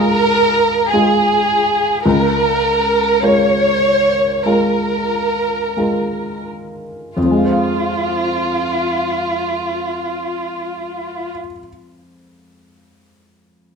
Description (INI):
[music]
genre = neoclassical piano and strings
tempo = 42-56 BPM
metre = 4/4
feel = rubato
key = F minor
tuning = A4 = 440 Hz
[part]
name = warm chamber violin section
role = melody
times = 0.0-11.3 s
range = F4 to Db5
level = -16 LUFS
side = right 1 dB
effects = none
[part]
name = clear upright piano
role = accompaniment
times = 0.0-13.8 s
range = Db2 to F5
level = -19 LUFS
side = equal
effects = none
[sound]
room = moderate recital hall reverb, RT60 1.3 s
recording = minimal, uncompressed stereo recording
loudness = -14 LUFS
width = side -5 dB against mid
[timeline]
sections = 0.0-7.2 A section; 7.2-12.8 B section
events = slowing down 0.0-7.2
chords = 0.0 Db; 2.0 Bbm7/Db; 7.2 Fm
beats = 0.92 | 2.04 3.21 4.45 5.76 | 7.16 8.59 10.01 11.42